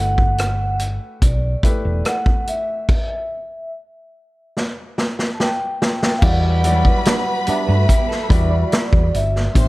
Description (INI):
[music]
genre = lush 1970s-style soul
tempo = 72 BPM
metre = 4/4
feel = straight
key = E minor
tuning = A4 = 439 Hz
[part]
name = vibraphone with soft mallets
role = melody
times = 0.0-9.7 s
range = D5 to A5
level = -24 LUFS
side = equal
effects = none
[part]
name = warm baby grand piano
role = accompaniment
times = 0.0-9.7 s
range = B2 to D5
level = -28 LUFS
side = left 3 dB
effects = none
[part]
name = hollow-body short-scale fingered electric bass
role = bass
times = 0.0-9.7 s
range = E1 to G2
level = -18 LUFS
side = equal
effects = none
[part]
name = vintage drum kit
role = drums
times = 0.2-9.7 s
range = crash cymbal, hi-hat, kick drum, rim click, snare drum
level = -17 LUFS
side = equal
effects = none
[part]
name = warm studio string section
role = second line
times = 6.2-9.7 s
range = B4 to C6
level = -27 LUFS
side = left 1 dB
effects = none
[part]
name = warm trombone section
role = stabs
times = 7.1-7.7 s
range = G3 to D4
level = -25 LUFS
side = right 5 dB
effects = none
[part]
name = electric guitar through a small old amp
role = riff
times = 7.7-9.5 s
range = A3 to D5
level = -27 LUFS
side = right 7 dB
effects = tremolo
[sound]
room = small room ambience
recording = none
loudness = -16 LUFS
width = side -20 dB against mid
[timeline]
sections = 0.0-6.2 A section; 6.2-9.7 B section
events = stop 2.9-6.2; drum fill 4.6-6.2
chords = 0.0 G69; 2.9 N.C.; 6.2 Em9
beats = 0.39 1.23 2.06 | 2.89 3.73 4.56 5.39 | 6.22 7.06 7.89 8.72 | 9.55